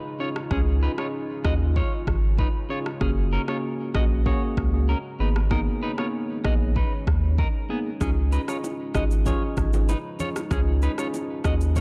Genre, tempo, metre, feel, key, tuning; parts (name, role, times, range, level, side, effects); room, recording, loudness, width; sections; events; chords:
afrobeats; 96 BPM; 4/4; straight; A4 = 439 Hz
deep dark ambient pad; sustained chords; 0.0-11.8 s; C#3 to F#4; -38 LUFS; equal; chorus, built-in reverb
tine electric piano; accompaniment; 0.2-11.7 s; A#3 to G#4; -32 LUFS; equal
clean electric guitar; riff; 0.2-11.8 s; B3 to D#5; -36 LUFS; equal; spring reverb, delay
afro-pop drum kit; drums; 0.4-11.8 s; kick drum, rim click, shaker; -29 LUFS; equal
saturated sub bass; bass; 0.5-11.8 s; F#1 to D#2; -25 LUFS; equal
congas and bongos; percussion; 8.0-11.8 s; -38 LUFS; equal
digital ambience; dark, warm production; -24 LUFS; mono
0.0-11.8 A section
break 0.0-8.0
0.0 C#add9; 3.0 F#add9; 5.2 G#madd9; 8.0 C#add9